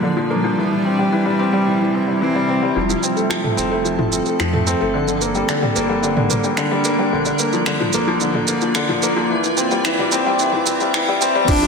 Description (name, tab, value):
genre	piano and strings electronica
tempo	110 BPM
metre	4/4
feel	straight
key	F major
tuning	A4 = 440 Hz
part	warm cello	melody	0.0-2.8, 11.5-11.7 s	F3 to D4	-20 LUFS	right 1 dB	digital delay
part	granular cloud pad	sustained chords	0.0-11.7 s	Bb2 to E5	-24 LUFS	right 1 dB	built-in reverb, sidechain pumping
part	felt-muted upright piano	riff	0.0-11.7 s	D3 to C4	-18 LUFS	left 2 dB	digital delay
part	round analog bass	bass	2.8-11.7 s	F1 to F2	-30 LUFS	right 1 dB	sidechain pumping
part	organic electronic drum kit	drums	2.9-11.6 s	crash cymbal, finger snaps, shaker, toms	-23 LUFS	right 3 dB	none
part	electronic kick drum	drums	11.5-11.6 s	none	-19 LUFS	right 1 dB	none
room	moderate lush hall reverb, RT60 2.1 s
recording	high-pass filter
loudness	-16 LUFS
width	side -4 dB against mid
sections	0.0-2.8 A section; 2.8-11.5 B section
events	build-up 2.8-11.5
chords	0.0 Bb; 0.6 C; 2.8 F; 4.9 Gm; 7.1 Bb; 9.3 C